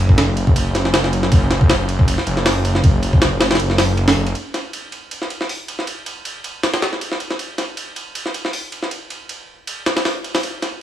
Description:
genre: drum and bass, jungle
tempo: 158 BPM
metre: 4/4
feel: swing 54% on 16ths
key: unclear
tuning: A4 = 437 Hz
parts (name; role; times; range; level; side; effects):
- detuned saw bass; bass; 0.0-4.3 s; F#1; -18 LUFS; equal; none
- jungle sampler-style drum kit; drums; 0.1-10.7 s; hi-hat, kick drum, ride cymbal, snare drum; -18 LUFS; equal; high-pass filter on snare, studio reverb, high-pass filter on cymbals, high-pass filter on kick, high-pass filter on hats
room: little or no reverb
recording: small room ambience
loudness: -16 LUFS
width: side -11 dB against mid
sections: 0.0-4.4 A section; 4.4-10.8 B section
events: drop 0.0-4.4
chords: none

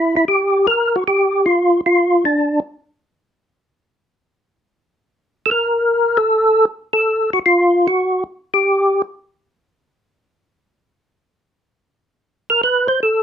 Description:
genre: jazz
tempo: 152 BPM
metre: 4/4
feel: swing 66% on 8ths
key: unclear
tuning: A4 = 441 Hz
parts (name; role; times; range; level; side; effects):
- percussive tonewheel organ; solo; 0.0-2.6, 5.5-9.0, 12.5-13.2 s; D4 to C5; -13 LUFS; equal; slow rotary speaker, chorus vibrato
room: light reverb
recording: close, detailed microphones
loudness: -14 LUFS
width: side -8 dB against mid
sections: 0.0-11.8 A section; 11.8-13.2 B section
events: tonewheel organ solo 11.8-13.2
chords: none

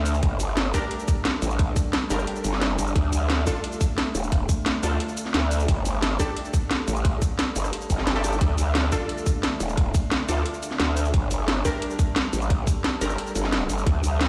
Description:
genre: dark technical drum and bass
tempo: 176 BPM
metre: 4/4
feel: straight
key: unclear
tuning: A4 = 441 Hz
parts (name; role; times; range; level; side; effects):
- metallic inharmonic drone; sustained chords; 0.0-14.3 s; D3 to A4; -35 LUFS; equal; chorus, built-in reverb, sidechain pumping
- growl bass; bass; 0.0-14.3 s; Eb1 to D2; -27 LUFS; equal; chorus, overdrive
- drum and bass drum kit; drums; 0.1-14.3 s; hi-hat, rim click, shaker, snare drum; -30 LUFS; equal; none
- electronic kick drum; drums; 0.2-13.9 s; none; -25 LUFS; equal; none
- orchestra-hit-like synth stab; stabs; 0.7-13.1 s; D4 to Bb4; -34 LUFS; equal; built-in reverb, dub echo
room: light reverb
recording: played on a big sound system in a bare room, stone room reverb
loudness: -24 LUFS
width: mono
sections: 0.0-14.3 A section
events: none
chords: 0.2 G5; 3.0 D5; 5.7 Gsus2; 8.4 D5; 11.1 G5

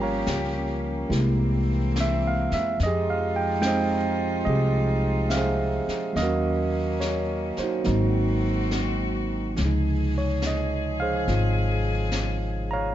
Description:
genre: jazz ballad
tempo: 71 BPM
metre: 4/4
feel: swing 66% on 8ths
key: unclear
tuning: A4 = 444 Hz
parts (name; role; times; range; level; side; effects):
- tine electric piano; accompaniment; 0.0-12.9 s; C3 to Bb5; -26 LUFS; right 3 dB; none
- rich chamber cello section; sustained chords; 0.0-12.9 s; Eb3 to Ab4; -32 LUFS; left 3 dB; none
- upright bass; bass; 0.0-12.9 s; G1 to F2; -26 LUFS; left 1 dB; none
- jazz brush drum kit; drums; 0.3-12.9 s; brushed snare drum, hi-hat, snare drum; -35 LUFS; left 1 dB; none
room: little or no reverb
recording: dark, warm production, nothing above 7.6 kHz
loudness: -22 LUFS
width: side -12 dB against mid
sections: 0.0-9.6 A section; 9.6-12.9 B section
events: none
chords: 0.0 Gm7b5; 1.1 C7b13; 2.8 Fm9; 6.1 Ebm7; 7.9 Ab7; 9.6 Dbmaj7

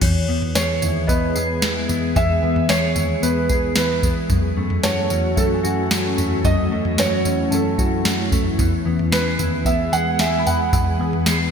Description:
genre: dream pop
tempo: 112 BPM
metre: 4/4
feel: straight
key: E major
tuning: A4 = 441 Hz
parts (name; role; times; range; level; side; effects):
- ethereal airy pad; sustained chords; 0.0-11.5 s; E3 to G#4; -25 LUFS; left 1 dB; ensemble chorus, built-in reverb
- mellow electric guitar; arpeggios; 0.0-11.5 s; F#2 to G#4; -25 LUFS; left 3 dB; wide subtle chorus, ping-pong delay
- vintage muted picked electric bass; bass; 0.0-11.5 s; D#2 to F#2; -25 LUFS; equal; none
- soft vintage rhythm box; drums; 0.0-11.4 s; crash cymbal, kick drum, snare drum, tambourine, toms; -21 LUFS; equal; gated reverb
- worn celesta; texture; 0.0-11.1 s; C#5 to B5; -32 LUFS; left 3 dB; analog chorus, ping-pong delay
- felt-muted upright piano; melody; 0.6-11.2 s; A4 to F#5; -23 LUFS; right 4 dB; analog chorus, ping-pong delay
room: moderate lush hall reverb, RT60 2.5 s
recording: bright 1980s-style digital production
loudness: -17 LUFS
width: side -7 dB against mid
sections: 0.0-11.5 A section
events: none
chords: 0.0 E; 4.3 F#m7; 8.6 E

